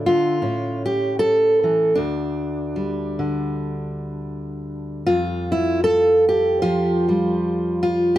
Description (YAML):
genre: folk, solo fingerstyle acoustic guitar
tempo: 77 BPM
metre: 4/4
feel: swing 57% on 8ths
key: unclear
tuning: A4 = 441 Hz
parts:
  - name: fingerpicked steel-string acoustic guitar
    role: solo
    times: 0.0-8.2 s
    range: D2 to A4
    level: -18 LUFS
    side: equal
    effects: none
room: light reverb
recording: none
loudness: -18 LUFS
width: side -13 dB against mid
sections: 0.0-5.1 A section; 5.1-8.2 B section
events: none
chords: 0.4 A; 2.0 Dsus4; 5.1 Fsus2